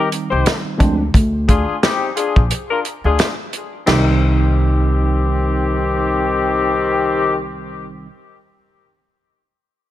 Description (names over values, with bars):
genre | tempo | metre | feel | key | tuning
hip hop, boom-bap hip-hop | 88 BPM | 4/4 | swing 57% on 16ths | C minor | A4 = 440 Hz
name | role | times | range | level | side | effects
mellow tine electric piano | accompaniment | 0.0-8.1 s | D2 to Eb4 | -22 LUFS | right 3 dB | medium stereo tremolo, cassette tape, high-pass filter, low-pass filter
warm horn section | stabs | 0.0-7.4 s | Eb3 to C5 | -19 LUFS | left 4 dB | high-pass filter, low-pass filter, digital delay
warm soul drum kit | drums | 0.1-4.1 s | crash cymbal, hi-hat, kick drum, snare drum | -17 LUFS | equal | none
upright bass | bass | 0.3-8.1 s | Bb1 to D2 | -18 LUFS | equal | none
room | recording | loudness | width
light reverb, small room ambience | none | -14 LUFS | side -13 dB against mid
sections
0.0-3.9 A section; 3.9-6.6 B section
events
none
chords
0.0 Cm; 0.8 Bb7/D (rootless); 3.9 Cm